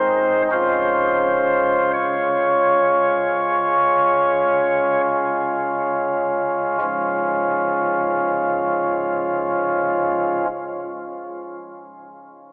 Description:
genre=classical, chorale-style piece for pipe organ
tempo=33-44 BPM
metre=4/4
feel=rubato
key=Db major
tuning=A4 = 440 Hz
part: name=pipe organ, flutes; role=solo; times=0.0-10.5 s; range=Db1 to Db5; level=-17 LUFS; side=equal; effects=none
room=wet cathedral reverb, RT60 6.0 s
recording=telephone sound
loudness=-17 LUFS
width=side -32 dB against mid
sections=0.0-6.8 A section; 6.8-12.5 B section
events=slowing down 0.0-6.8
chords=0.0 Ab; 0.5 Db

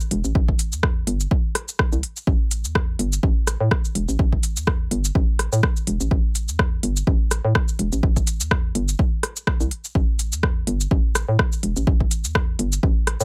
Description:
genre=minimal techno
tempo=125 BPM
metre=4/4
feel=swing 56% on 16ths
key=unclear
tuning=A4 = 441 Hz
part: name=minimal click drum kit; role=drums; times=0.0-13.2 s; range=hi-hat, rim click, shaker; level=-26 LUFS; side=equal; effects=none
part: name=hollow knocking FM bass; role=bass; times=0.1-13.2 s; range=E1 to A2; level=-25 LUFS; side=equal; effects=sidechain pumping
part: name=electronic kick drum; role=drums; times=0.4-12.9 s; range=none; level=-23 LUFS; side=equal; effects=overdrive
room=little or no reverb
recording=faint mains hum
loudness=-21 LUFS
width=mono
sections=0.0-13.2 A section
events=none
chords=none

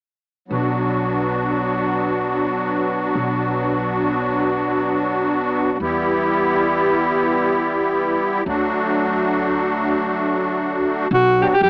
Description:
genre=balkan folk, Balkan wedding band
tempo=free time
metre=none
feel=none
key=B minor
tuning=A4 = 440 Hz
part: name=musette accordion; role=accompaniment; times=0.5-11.5 s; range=F#3 to G4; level=-20 LUFS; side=equal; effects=cassette tape
part: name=upright bass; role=bass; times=0.5-11.7 s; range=B1 to F#2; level=-32 LUFS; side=equal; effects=tube saturation
part: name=bright alto saxophone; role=melody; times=11.1-11.7 s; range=F#4 to G4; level=-16 LUFS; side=equal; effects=cassette tape
room=moderate booth ambience, RT60 0.3 s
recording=home recording on cassette, AM radio sound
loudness=-20 LUFS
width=mono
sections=0.5-11.1 A section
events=none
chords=0.5 Bm; 5.8 Em; 8.5 D; 11.1 Bm

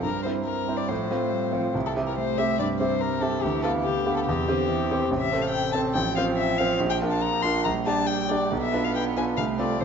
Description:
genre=quick classical-period movement for piano quartet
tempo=142 BPM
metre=4/4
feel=rubato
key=F major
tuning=A4 = 440 Hz
part: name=rich violin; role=melody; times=0.0-9.8 s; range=G4 to C6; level=-28 LUFS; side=left 7 dB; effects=none
part: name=warm cello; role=second line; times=0.0-9.8 s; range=C3 to B3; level=-31 LUFS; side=right 8 dB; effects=none
part: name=clear concert grand piano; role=accompaniment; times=0.0-9.8 s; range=A1 to F5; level=-25 LUFS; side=right 1 dB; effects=none
room=wet scoring stage reverb, RT60 1.6 s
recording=nothing above 7.5 kHz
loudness=-22 LUFS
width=side -6 dB against mid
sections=0.0-9.8 A section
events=none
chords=0.0 C/G; 0.9 F/A; 1.7 C; 3.4 G7/D; 4.3 C/E; 5.1 Am; 6.0 F/A; 6.8 Bb; 7.6 Gm/Bb; 8.5 Bdim; 9.4 F/C

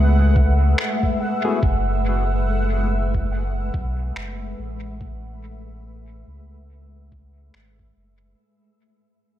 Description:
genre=ambient dub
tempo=71 BPM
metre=4/4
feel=swing 59% on 16ths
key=F# minor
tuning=A4 = 443 Hz
part: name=granular cloud pad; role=sustained chords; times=0.0-8.4 s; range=G#3 to E5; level=-26 LUFS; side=left 1 dB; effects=built-in reverb
part: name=warm sub bass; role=bass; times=0.0-8.3 s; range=F#1 to C#2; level=-21 LUFS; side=equal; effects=none
part: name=bubbling stepped-filter texture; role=texture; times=0.0-8.4 s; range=F#5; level=-31 LUFS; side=right 3 dB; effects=chorus, built-in reverb
part: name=electronic kick drum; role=drums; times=0.4-7.9 s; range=none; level=-22 LUFS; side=equal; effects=none
part: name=electronic finger snaps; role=drums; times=0.8-7.7 s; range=none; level=-29 LUFS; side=equal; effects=dub echo
part: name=barky tine electric piano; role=stabs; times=1.4-1.6 s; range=A3 to G#4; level=-30 LUFS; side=left 4 dB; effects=dub echo
room=light reverb, digital ambience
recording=none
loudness=-18 LUFS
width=side -12 dB against mid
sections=0.0-8.4 A section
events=fade-out 0.0-8.4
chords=0.0 F#m11

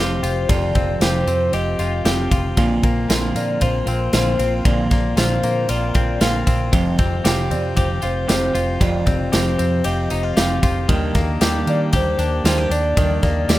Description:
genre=jangly indie pop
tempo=115 BPM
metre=4/4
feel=straight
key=unclear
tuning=A4 = 440 Hz
part: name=hollow clarinet-like synth lead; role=melody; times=0.0-13.6 s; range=C5 to F5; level=-24 LUFS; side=left 1 dB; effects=chorus, phaser, slapback echo
part: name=clean electric guitar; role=accompaniment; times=0.0-13.6 s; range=F2 to G4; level=-24 LUFS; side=right 4 dB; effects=plate reverb
part: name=direct-recorded clean electric guitar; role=arpeggios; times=0.0-13.6 s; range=F2 to G4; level=-24 LUFS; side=left 4 dB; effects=plate reverb
part: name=vintage muted fingered electric bass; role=bass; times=0.0-13.6 s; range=F1 to Eb3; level=-23 LUFS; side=equal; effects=none
part: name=big rock drum kit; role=drums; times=0.2-13.6 s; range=kick drum, ride cymbal, snare drum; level=-21 LUFS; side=equal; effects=none
part: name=tambourine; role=percussion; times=0.2-13.6 s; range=none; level=-34 LUFS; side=right 6 dB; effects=none
room=light reverb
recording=rough home demo mix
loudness=-16 LUFS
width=side -15 dB against mid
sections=0.0-13.6 A section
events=none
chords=0.0 Fsus2; 2.6 Bbadd9; 6.7 Fsus2; 10.9 Ebmaj7

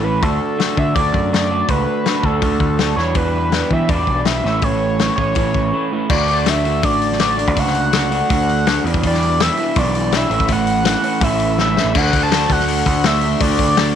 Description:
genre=indie rock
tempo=164 BPM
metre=4/4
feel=straight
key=D major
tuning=A4 = 438 Hz
part: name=overdriven synth lead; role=melody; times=0.0-14.0 s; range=A4 to A5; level=-20 LUFS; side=right 1 dB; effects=distortion, slapback echo
part: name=electric guitar through a small old amp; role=riff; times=0.0-14.0 s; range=E2 to F#4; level=-20 LUFS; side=right 1 dB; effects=none
part: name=growling picked electric bass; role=bass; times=0.0-13.9 s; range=A1 to E3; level=-21 LUFS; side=right 1 dB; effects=overdrive
part: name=loose indie drum kit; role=drums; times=0.2-13.9 s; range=crash cymbal, hi-hat, kick drum, snare drum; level=-20 LUFS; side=left 4 dB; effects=none
room=small room ambience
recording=1960s-style stereo, faint mains hum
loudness=-14 LUFS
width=side -9 dB against mid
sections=0.0-6.1 A section; 6.1-11.9 B section; 11.9-14.0 C section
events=break 5.7-6.1; drum fill 11.6-11.9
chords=0.2 D; 3.0 Em7; 4.4 A; 6.1 D; 8.8 Em7; 10.3 A; 11.9 D

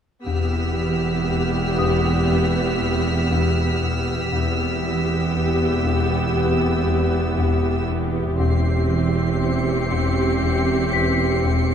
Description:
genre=cinematic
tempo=59 BPM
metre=4/4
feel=straight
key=unclear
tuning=A4 = 440 Hz
part: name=dark studio viola section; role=accompaniment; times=0.2-11.7 s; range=B3 to G4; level=-23 LUFS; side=equal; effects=none
part: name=folk marimba with medium mallets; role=riff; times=0.3-11.7 s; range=E2 to E3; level=-24 LUFS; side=left 4 dB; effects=none
part: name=rich studio double bass section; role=bass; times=0.3-11.7 s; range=E1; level=-26 LUFS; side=right 2 dB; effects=none
part: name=warm studio cello section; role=bass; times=0.3-11.7 s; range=E2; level=-26 LUFS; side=right 4 dB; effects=none
part: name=rich studio violin section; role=texture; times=0.3-11.7 s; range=E6 to C#7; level=-30 LUFS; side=right 1 dB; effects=none
part: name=celesta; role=texture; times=1.8-11.7 s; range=B4 to B6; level=-29 LUFS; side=left 5 dB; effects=none
room=moderate scoring stage reverb, RT60 1.7 s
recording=minimal, uncompressed stereo recording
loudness=-18 LUFS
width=side -8 dB against mid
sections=0.3-11.7 A section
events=none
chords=0.3 Em; 8.4 C/E

